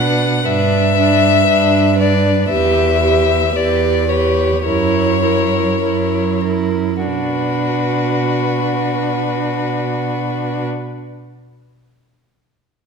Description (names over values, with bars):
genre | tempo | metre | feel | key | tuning
classical, slow romantic movement for string quartet | 46-61 BPM | 4/4 | rubato | B minor | A4 = 440 Hz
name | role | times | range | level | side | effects
rich violin | melody | 0.0-10.7 s | B4 to F#5 | -18 LUFS | left 8 dB | none
dark violin | second line | 0.0-10.7 s | F#4 to B4 | -22 LUFS | left 2 dB | none
rich viola | accompaniment | 0.0-10.6 s | D4 to G4 | -20 LUFS | right 3 dB | none
rich cello | bass | 0.0-10.7 s | E2 to B2 | -19 LUFS | right 5 dB | none
room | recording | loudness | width
wet recital hall reverb, RT60 1.6 s | none | -13 LUFS | side -5 dB against mid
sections
0.0-7.1 A section; 7.1-11.9 B section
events
slowing down 0.0-7.1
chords
0.5 G; 2.5 Em; 4.7 F#7; 7.1 Bm